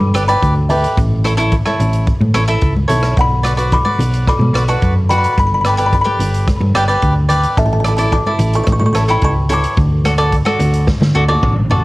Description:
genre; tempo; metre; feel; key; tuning
calypso; 109 BPM; 4/4; straight; unclear; A4 = 439 Hz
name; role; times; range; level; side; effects
kalimba; melody; 0.0-11.4 s; E5 to D6; -19 LUFS; left 1 dB; cassette tape, plate reverb, tape echo
hollow-body short-scale fingered electric bass; bass; 0.0-11.8 s; G1 to D3; -15 LUFS; equal; none
congas; percussion; 0.0-11.8 s; none; -23 LUFS; left 1 dB; none
cavaquinho; accompaniment; 0.1-11.8 s; E4 to E5; -18 LUFS; equal; cassette tape, plate reverb
swinging big-band drum kit; drums; 0.1-11.8 s; hi-hat, kick drum, rim click, snare drum, toms; -18 LUFS; equal; cassette tape
room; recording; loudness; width
little or no reverb; home recording on cassette; -12 LUFS; side -19 dB against mid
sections
0.0-11.8 A section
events
drum fill 10.9-11.8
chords
0.0 G; 1.0 A; 3.2 Bm; 5.4 G; 7.6 Asus4; 8.7 A; 9.8 D

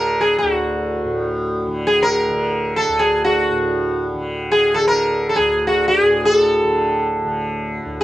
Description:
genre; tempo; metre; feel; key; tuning
indian classical, Hindustani; free time; none; none; D major; A4 = 440 Hz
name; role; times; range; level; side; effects
sitar; melody; 0.0-8.0 s; F#4 to Bb4; -16 LUFS; equal; none
tanpura; drone; 0.0-8.0 s; D2 to D3; -24 LUFS; equal; none
room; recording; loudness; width
moderate small room reverb, RT60 0.5 s; worn, warbling old tape, cassette tape, warbly pitch drift; -16 LUFS; side -15 dB against mid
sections
0.0-8.0 A section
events
none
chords
none

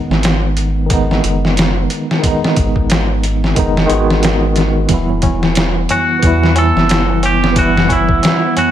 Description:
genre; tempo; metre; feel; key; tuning
trip hop; 90 BPM; 4/4; swing 57% on 16ths; unclear; A4 = 440 Hz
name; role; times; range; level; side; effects
tine electric piano; accompaniment; 0.0-8.7 s; D#3 to F#4; -17 LUFS; right 1 dB; medium stereo tremolo, vintage 12-bit sampler grit, tape echo
soft dub sub bass; bass; 0.1-8.2 s; E1 to E2; -17 LUFS; equal; none
trip hop sampler-style drum kit; drums; 0.1-8.7 s; hi-hat, kick drum, snare drum; -16 LUFS; equal; none
warbly tape-like pad; sustained chords; 4.9-8.7 s; B3; -23 LUFS; right 5 dB; chorus, built-in reverb
tabla; percussion; 4.9-8.7 s; none; -24 LUFS; left 1 dB; none
twangy electric guitar; melody; 5.9-8.7 s; E4 to A4; -15 LUFS; right 1 dB; tape echo
room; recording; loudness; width
light reverb; none; -11 LUFS; side -11 dB against mid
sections
0.0-8.7 A section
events
none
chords
0.0 G#m; 4.9 Em

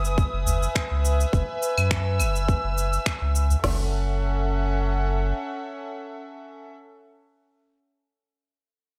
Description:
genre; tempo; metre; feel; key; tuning
organic downtempo; 104 BPM; 4/4; swing 53% on 16ths; F# dorian; A4 = 443 Hz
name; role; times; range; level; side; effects
dark chamber string section; sustained chords; 0.0-6.7 s; C#4 to E6; -31 LUFS; equal; vintage 12-bit sampler grit, sidechain pumping
warm sub bass; bass; 0.0-5.3 s; F#1 to F#2; -26 LUFS; equal; none
electronic cabasa, finger snaps and claves; drums; 0.0-3.6 s; none; -31 LUFS; equal; overdrive
organic electronic drum kit; drums; 0.2-3.8 s; crash cymbal, kick drum, snare drum, toms; -28 LUFS; equal; overdrive
udu; percussion; 0.5-3.6 s; none; -31 LUFS; equal; none
room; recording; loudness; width
light reverb; none; -24 LUFS; mono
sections
0.0-3.6 A section; 3.6-5.9 B section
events
filter sweep on sub bass 0.0-3.6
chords
0.0 Emaj7/F#; 3.6 F#m7

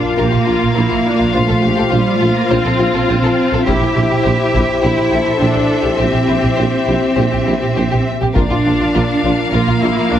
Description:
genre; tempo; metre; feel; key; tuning
cinematic, epic orchestral film score; 103 BPM; 4/4; straight; Bb lydian; A4 = 440 Hz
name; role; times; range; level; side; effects
warm symphonic violin section; melody; 0.0-10.2 s; E5 to F5; -23 LUFS; left 5 dB; none
rich studio viola section; accompaniment; 0.0-10.2 s; D4 to A4; -22 LUFS; left 1 dB; none
warm French horn section; sustained chords; 0.0-10.2 s; E4 to C5; -21 LUFS; left 3 dB; none
rich symphonic cello section; bass; 0.0-10.2 s; G3 to G4; -18 LUFS; right 2 dB; none
warm symphonic violin section; second line; 0.2-10.2 s; D4 to C5; -22 LUFS; left 4 dB; none
warm symphonic double bass section; bass; 0.2-10.2 s; Bb1; -19 LUFS; right 3 dB; none
warm tuba; bass; 0.2-10.2 s; Bb1; -22 LUFS; right 2 dB; none
taiko ensemble; drums; 3.7-4.8, 8.4-9.5 s; none; -21 LUFS; left 1 dB; none
room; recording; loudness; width
moderate scoring stage reverb, RT60 1.9 s; heavily compressed radio sound; -12 LUFS; side -10 dB against mid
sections
0.0-10.2 A section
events
none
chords
0.0 Bb; 1.4 F/Bb; 3.7 C/Bb; 8.4 Bb

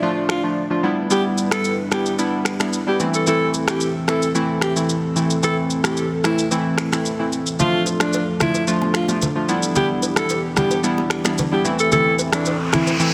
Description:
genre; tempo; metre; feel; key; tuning
afrobeats; 111 BPM; 4/4; straight; A minor; A4 = 440 Hz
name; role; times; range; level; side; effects
warm analog keys; accompaniment; 0.0-13.1 s; E3 to F4; -24 LUFS; equal; chorus
airy breathy pad; sustained chords; 0.0-13.1 s; E3 to D5; -27 LUFS; equal; chorus
clear alto saxophone; melody; 0.3-13.0 s; D4 to A4; -25 LUFS; equal; tape echo
electronic rim click, finger snaps and shaker; drums; 0.3-13.1 s; none; -26 LUFS; equal; vintage 12-bit sampler grit, soft clipping on snare
congas and bongos; percussion; 7.6-13.0 s; none; -28 LUFS; equal; none
noise sweep; sound effects; 12.3-13.1 s; none; -27 LUFS; equal; none
room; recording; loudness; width
light reverb; dense, heavily limited modern master; -20 LUFS; mono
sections
0.0-13.1 A section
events
noise sweep 12.3-13.1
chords
0.0 Dm; 0.8 G6; 3.0 Am; 7.6 Dm; 9.5 G6; 11.6 Am

